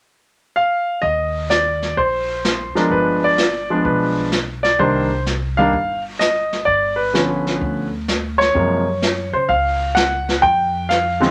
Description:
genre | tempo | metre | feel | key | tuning
jazz piano trio | 128 BPM | 4/4 | swing 68% on 8ths | unclear | A4 = 440 Hz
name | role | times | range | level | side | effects
clear concert grand piano | melody | 0.6-11.3 s | C3 to G5 | -19 LUFS | equal | none
upright bass | bass | 1.0-11.3 s | G1 to Db3 | -29 LUFS | equal | none
jazz brush drum kit | drums | 1.0-11.3 s | brushed snare drum, hi-hat, kick drum, snare drum | -25 LUFS | equal | none
room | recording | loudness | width
moderate studio reverb, RT60 0.6 s | none | -18 LUFS | mono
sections
0.0-1.0 A section; 1.0-11.3 B section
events
none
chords
0.0 N.C.; 1.0 Eb5; 2.9 G7b9; 4.8 Cm9; 6.7 G7#11; 8.5 Gbmaj7(no3); 10.4 Fsus2

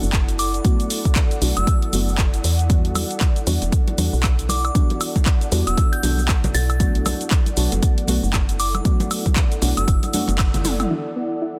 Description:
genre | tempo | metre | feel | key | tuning
deep house | 117 BPM | 4/4 | swing 59% on 16ths | E minor | A4 = 440 Hz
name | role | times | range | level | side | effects
deep mellow chord stab | stabs | 0.0-11.6 s | E3 to F#4 | -30 LUFS | equal | chorus, sidechain pumping, tape echo
woody FM bass | bass | 0.0-10.9 s | E1 to E2 | -24 LUFS | equal | sidechain pumping
house drum kit | drums | 0.0-11.5 s | handclaps, hi-hat, shaker, toms, woodblock | -28 LUFS | equal | overdrive, low-pass filter on snare, low-pass filter on hats, low-pass filter on perc, low-pass filter on toms
ethereal airy pad | texture | 0.0-11.6 s | E4 to F#5 | -33 LUFS | equal | ensemble chorus, built-in reverb, sidechain pumping
electronic kick drum | drums | 0.1-10.5 s | none | -20 LUFS | equal | overdrive
glassy synth bell | melody | 0.4-10.0 s | D6 to A6 | -31 LUFS | equal | chorus, dub echo
congas | percussion | 3.0-10.8 s | none | -32 LUFS | equal | none
soft round pluck | arpeggios | 10.9-11.5 s | B3 to E4 | -30 LUFS | equal | chorus, vintage 12-bit sampler grit, sidechain pumping, tape echo
room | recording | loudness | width
light reverb | dense, heavily limited modern master | -20 LUFS | mono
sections
0.0-10.9 A section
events
band accent 10.4; drum fill 10.6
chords
0.0 Bm7; 2.7 Em9; 6.8 Bm7; 10.9 Em9

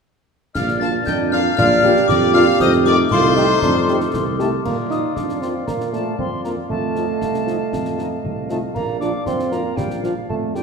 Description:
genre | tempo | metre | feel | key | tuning
military-style march for wind band | 117 BPM | 2/4 | straight | Bb major | A4 = 440 Hz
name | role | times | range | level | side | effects
warm trumpet section | melody | 0.5-10.6 s | C5 to A5 | -25 LUFS | left 4 dB | none
glockenspiel with brass mallets | second line | 0.5-4.6 s | C6 to A6 | -24 LUFS | left 10 dB | none
hollow piccolo | second line | 0.5-10.6 s | F5 to A6 | -26 LUFS | left 3 dB | none
mellow woodwind section | second line | 0.5-10.6 s | A4 to F5 | -26 LUFS | left 2 dB | none
dark trombone section | sustained chords | 0.6-10.6 s | F3 to Eb4 | -30 LUFS | right 2 dB | none
mellow tuba | bass | 0.6-10.6 s | Bb1 to Bb2 | -23 LUFS | right 2 dB | none
concert snare drum, clash cymbals and concert bass drum | drums | 0.6-10.6 s | none | -28 LUFS | left 1 dB | none
mellow French horn section | accompaniment | 0.8-10.6 s | F3 to G4 | -25 LUFS | left 3 dB | none
clear euphonium | second line | 1.1-10.6 s | F3 to G4 | -22 LUFS | right 6 dB | none
room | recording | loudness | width
wet scoring stage reverb, RT60 1.6 s | none | -16 LUFS | side -5 dB against mid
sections
0.6-4.7 A section; 4.7-10.6 B section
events
none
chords
0.6 Bb; 2.6 F9; 4.7 Bb; 6.7 F7; 8.8 Bb

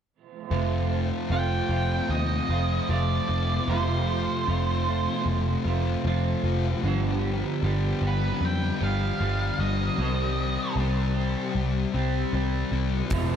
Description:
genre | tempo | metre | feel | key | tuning
rock, shoegaze and dream pop | 76 BPM | 4/4 | straight | F mixolydian | A4 = 440 Hz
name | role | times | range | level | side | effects
crunchy overdriven guitar | riff | 0.5-13.4 s | F2 to G4 | -30 LUFS | right 8 dB | reverse reverb
thick fuzz guitar | riff | 0.5-13.4 s | F2 to C4 | -30 LUFS | left 7 dB | distortion, analog chorus
vintage muted picked electric bass | bass | 0.5-13.4 s | F1 to F2 | -26 LUFS | equal | none
octave-fuzz lead guitar | melody | 1.3-10.7 s | B4 to G5 | -31 LUFS | right 2 dB | distortion, diffuse ambient delay
huge arena drum kit | drums | 13.1-13.3 s | hi-hat, kick drum | -28 LUFS | equal | none
room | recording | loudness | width
moderate plate reverb, RT60 2.5 s | dreamy mix soaked in reverb | -23 LUFS | side -8 dB against mid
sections
0.5-13.4 A section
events
none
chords
0.5 F; 6.8 G7; 10.0 Cm

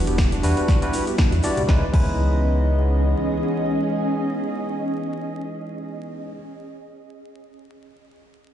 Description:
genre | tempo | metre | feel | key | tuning
deep house | 120 BPM | 4/4 | swing 55% on 16ths | C# minor | A4 = 438 Hz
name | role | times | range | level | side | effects
hollow soft pad | sustained chords | 0.0-6.1 s | E3 to D#5 | -30 LUFS | equal | chorus, sidechain pumping
sub bass with octave | bass | 0.0-3.1 s | E1 to E2 | -20 LUFS | equal | tube saturation, sidechain pumping
ethereal airy pad | texture | 0.0-6.3 s | C#4 to D#5 | -28 LUFS | right 1 dB | ensemble chorus, built-in reverb, sidechain pumping
warbly dusty pluck | arpeggios | 0.1-2.1 s | B3 to B4 | -32 LUFS | right 1 dB | chorus, sidechain pumping, analog delay
deep house drum kit | drums | 0.1-2.1 s | crash cymbal, hi-hat, snare drum | -30 LUFS | left 1 dB | overdrive
tube shaker | percussion | 0.1-1.7 s | none | -38 LUFS | left 3 dB | none
electronic kick drum | drums | 0.2-2.1 s | none | -19 LUFS | equal | overdrive
barky tine electric piano | stabs | 0.4-6.4 s | G3 to D5 | -28 LUFS | left 1 dB | analog delay
bongos and congas | percussion | 1.3-1.7 s | none | -32 LUFS | right 1 dB | none
room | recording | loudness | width
light reverb, digital ambience | played on a big sound system in a bare room, stone room reverb, vinyl crackle, nothing above 10.8 kHz | -19 LUFS | side -11 dB against mid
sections
0.0-1.7 A section; 1.7-5.7 B section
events
drop 0.0-1.7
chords
0.0 Em7; 1.7 C#m7

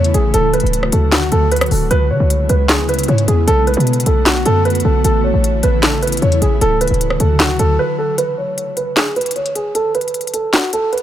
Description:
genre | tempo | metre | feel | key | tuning
hip hop, trap | 153 BPM | 4/4 | half-time | unclear | A4 = 441 Hz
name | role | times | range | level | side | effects
dark concert grand piano | melody | 0.0-11.0 s | F#4 to C#5 | -17 LUFS | right 2 dB | low-pass filter
ethereal airy pad | sustained chords | 0.0-8.2 s | C#3 to F#4 | -21 LUFS | left 1 dB | ensemble chorus, built-in reverb
short 808-style bass | bass | 0.0-7.8 s | D1 to C#3 | -15 LUFS | equal | none
trap drum kit | drums | 0.0-11.0 s | handclaps, hi-hat, rim click, snare drum | -18 LUFS | left 1 dB | none
room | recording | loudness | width
little or no reverb | none | -13 LUFS | side -11 dB against mid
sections
0.0-8.2 A section; 8.2-11.0 B section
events
break 7.8-8.2, 8.2-11.0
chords
0.3 D; 1.9 C#m7; 3.5 Bm7; 5.0 A; 6.6 D; 8.2 N.C.

